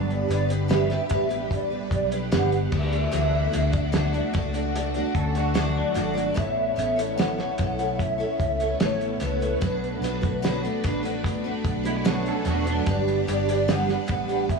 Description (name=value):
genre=indie pop, bedroom pop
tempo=74 BPM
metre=4/4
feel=straight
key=unclear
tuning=A4 = 440 Hz
part: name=hollow clarinet-like synth lead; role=melody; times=0.0-14.6 s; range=B4 to F#5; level=-28 LUFS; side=right 1 dB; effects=ensemble chorus, dub echo
part: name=clean electric guitar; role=second line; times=0.0-0.1, 5.2-6.4, 11.9-13.1 s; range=F#3 to A4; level=-32 LUFS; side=right 6 dB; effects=ensemble chorus, dub echo
part: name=picked steel-string acoustic guitar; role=accompaniment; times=0.0-14.6 s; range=B2 to D5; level=-28 LUFS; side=equal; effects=ensemble chorus, warbly pitch drift, dub echo
part: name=phased string machine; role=sustained chords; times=0.0-14.6 s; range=B2 to F#4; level=-33 LUFS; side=right 2 dB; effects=ensemble chorus, phaser
part: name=vintage muted fingered electric bass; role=bass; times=0.0-14.6 s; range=E1 to D2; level=-28 LUFS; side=left 1 dB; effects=none
part: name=cloth-damped thuddy drum kit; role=drums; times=0.1-14.6 s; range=crash cymbal, hi-hat, kick drum, snare drum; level=-28 LUFS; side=right 2 dB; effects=vintage 12-bit sampler grit, dub echo
room=light reverb, studio reverb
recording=echo-heavy mix, small room ambience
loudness=-22 LUFS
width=side -4 dB against mid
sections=0.0-14.6 A section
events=none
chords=0.0 G; 2.7 Dadd9; 6.4 Aadd9; 9.6 Bm7; 12.9 G